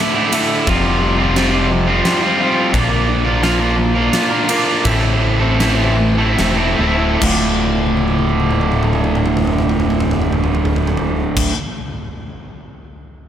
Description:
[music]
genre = post-rock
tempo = 70-87 BPM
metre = 3/4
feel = straight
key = D minor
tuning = A4 = 441 Hz
[part]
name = mellow electric guitar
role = arpeggios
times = 0.0-11.6 s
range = D2 to Bb4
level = -23 LUFS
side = left 2 dB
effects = analog delay
[part]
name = distorted electric guitar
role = riff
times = 0.0-11.5 s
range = D2 to Bb4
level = -16 LUFS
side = right 1 dB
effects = distortion
[part]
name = huge arena drum kit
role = drums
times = 0.3-11.6 s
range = crash cymbal, kick drum, ride cymbal, snare drum, toms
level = -21 LUFS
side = equal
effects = none
[part]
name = growling fingered electric bass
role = bass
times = 0.7-11.5 s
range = D1 to Bb1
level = -20 LUFS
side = equal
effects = overdrive
[sound]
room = light reverb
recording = none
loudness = -13 LUFS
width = side -10 dB against mid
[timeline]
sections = 0.0-7.2 A section; 7.2-12.4 B section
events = slowing down 2.7-7.2; drum fill 7.7-11.4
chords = 0.0 Dsus2; 0.7 Fsus2; 2.7 Bb; 4.9 Am; 7.2 Dm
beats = | 0.67 1.36 2.05 | 2.74 3.43 4.13 | 4.85 5.60 6.39 | 7.22 8.08 8.94 | 9.79 10.65 11.51

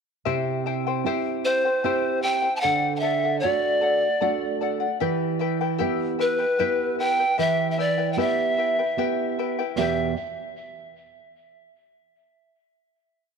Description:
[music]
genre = andean folk, Andean ensemble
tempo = 76 BPM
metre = 3/4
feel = straight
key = E minor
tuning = A4 = 439 Hz
[part]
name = charango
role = accompaniment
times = 0.3-10.1 s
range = E4 to G5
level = -28 LUFS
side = left 12 dB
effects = none
[part]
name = nylon-string guitar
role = accompaniment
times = 0.3-10.1 s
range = E2 to B4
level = -28 LUFS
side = right 10 dB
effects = none
[part]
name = bright polished pan flute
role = melody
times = 1.4-10.1 s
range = B4 to A5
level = -23 LUFS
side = equal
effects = tape echo
[sound]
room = moderate echo chamber reverb, RT60 2.2 s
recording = 1960s-style stereo with parts hard left and right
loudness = -21 LUFS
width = side -6 dB against mid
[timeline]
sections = 0.3-9.8 A section; 9.8-12.2 final chord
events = none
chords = 0.3 C; 2.6 D; 5.0 Em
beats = | 0.26 1.05 1.85 | 2.64 3.43 4.22 | 5.02 5.81 6.60 | 7.39 8.19 8.98 | 9.78

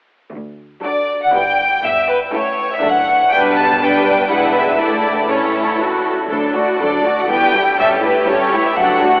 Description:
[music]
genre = quick classical-period movement for string orchestra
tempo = 121 BPM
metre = 3/4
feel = rubato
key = D major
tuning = A4 = 440 Hz
[part]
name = rich chamber double bass section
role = bass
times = 0.3-9.2 s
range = F#1 to D2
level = -35 LUFS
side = right 1 dB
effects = none
[part]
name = warm studio cello section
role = bass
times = 0.3-9.2 s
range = D2 to B2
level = -31 LUFS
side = equal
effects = none
[part]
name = rich chamber violin section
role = melody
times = 0.8-9.2 s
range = B4 to A5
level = -15 LUFS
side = equal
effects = none
[part]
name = warm studio violin section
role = second line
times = 0.8-9.2 s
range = D4 to D5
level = -18 LUFS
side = equal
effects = none
[part]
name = rich studio viola section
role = accompaniment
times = 0.8-9.2 s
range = E3 to F#4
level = -20 LUFS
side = equal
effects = none
[sound]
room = wet cathedral reverb, RT60 6.9 s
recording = in a vast, echoing space, telephone sound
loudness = -12 LUFS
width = side -28 dB against mid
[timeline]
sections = 0.3-9.2 A section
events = none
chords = 0.3 D; 1.3 Em/G; 1.8 A7/G; 2.8 D/F#; 3.3 G/B; 4.3 E7/B; 4.8 A; 6.3 D; 7.3 Em/G; 7.8 A7/G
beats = | 0.34 0.84 1.35 | 1.85 2.34 2.83 | 3.32 3.80 4.29 | 4.79 5.29 5.79 | 6.30 6.80 7.30 | 7.79 8.29 8.78

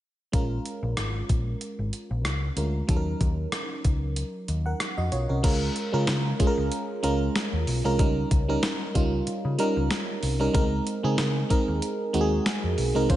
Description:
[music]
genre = 1980s-style pop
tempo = 94 BPM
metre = 4/4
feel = swing 55% on 16ths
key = unclear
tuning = A4 = 440 Hz
[part]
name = FM electric piano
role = accompaniment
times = 0.3-13.2 s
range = Gb3 to Gb5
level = -27 LUFS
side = right 1 dB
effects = chorus
[part]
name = hollow-body short-scale picked electric bass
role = bass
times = 0.3-13.2 s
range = Ab1 to Db3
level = -27 LUFS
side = equal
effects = none
[part]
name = clean 12-bit digital drum machine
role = drums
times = 0.3-13.2 s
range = crash cymbal, hi-hat, kick drum, rim click, snare drum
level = -27 LUFS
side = equal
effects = none
[sound]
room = light reverb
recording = nothing above 10.6 kHz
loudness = -24 LUFS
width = side -13 dB against mid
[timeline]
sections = 0.3-5.4 A section; 5.4-13.2 B section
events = none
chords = 0.3 Bbm7; 2.9 Ebm7; 5.4 Bbm7/Db; 8.0 Eb7/Db; 10.5 Abadd9/Db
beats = | 0.33 0.97 1.61 2.25 | 2.89 3.53 4.16 4.80 | 5.44 6.08 6.72 7.36 | 7.99 8.63 9.27 9.91 | 10.55 11.19 11.82 12.46 | 13.10

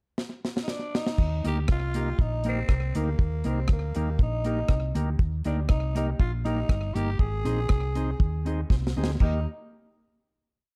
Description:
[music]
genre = ska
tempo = 120 BPM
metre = 4/4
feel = straight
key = Eb major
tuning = A4 = 440 Hz
[part]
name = deep reggae drum kit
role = drums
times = 0.2-9.3 s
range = crash cymbal, hi-hat, kick drum, rim click, snare drum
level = -27 LUFS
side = equal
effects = none
[part]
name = growling tenor saxophone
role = melody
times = 0.6-9.5 s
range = Bb3 to Ab4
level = -36 LUFS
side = equal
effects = slapback echo
[part]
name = hollow-body short-scale fingered electric bass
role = bass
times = 1.2-9.4 s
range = G1 to Eb2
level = -30 LUFS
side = equal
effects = none
[part]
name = mellow electric guitar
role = accompaniment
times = 1.4-9.4 s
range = Bb3 to Ab4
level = -36 LUFS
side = equal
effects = slapback echo
[part]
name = percussive tonewheel organ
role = stabs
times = 1.4-9.4 s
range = Eb4 to C5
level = -41 LUFS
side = equal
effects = overdrive
[sound]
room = small room ambience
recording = dark, warm production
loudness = -27 LUFS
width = mono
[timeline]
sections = 0.0-1.2 pickup bar; 1.2-9.2 head; 9.2-10.8 final chord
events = drum fill 0.2-1.2, 8.7-9.2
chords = 0.0 N.C.; 1.2 Eb; 7.2 Ab; 9.2 Eb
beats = 0.18 0.68 | 1.19 1.69 2.19 2.69 | 3.19 3.69 4.19 4.69 | 5.20 5.70 6.20 6.70 | 7.20 7.70 8.20 8.70 | 9.21

